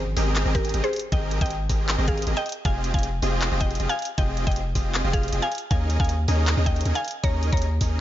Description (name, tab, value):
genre	future bass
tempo	157 BPM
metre	4/4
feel	half-time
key	Ab major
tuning	A4 = 438 Hz
part	mallet-like synth pluck	melody	0.0-7.7 s	G4 to Bb5	-30 LUFS	equal	chorus, sidechain pumping, tape echo
part	dense compressed supersaw	riff	0.0-8.0 s	C4 to Eb5	-29 LUFS	right 1 dB	sidechain pumping
part	long sustained 808-style bass	bass	0.0-8.0 s	F1 to Eb2	-24 LUFS	equal	sidechain pumping
part	impact	sound effects	0.0-1.1 s	none	-43 LUFS	right 1 dB	none
part	trap drum kit	drums	0.2-7.9 s	handclaps, hi-hat	-31 LUFS	equal	none
part	electronic kick drum	drums	0.5-7.9 s	none	-24 LUFS	equal	none
room	digital ambience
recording	nothing above 7.5 kHz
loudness	-21 LUFS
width	side -13 dB against mid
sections	0.0-8.0 A section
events	impact 0.0-1.1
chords	0.0 Abmaj9; 2.7 Fm9; 5.7 Eb7sus4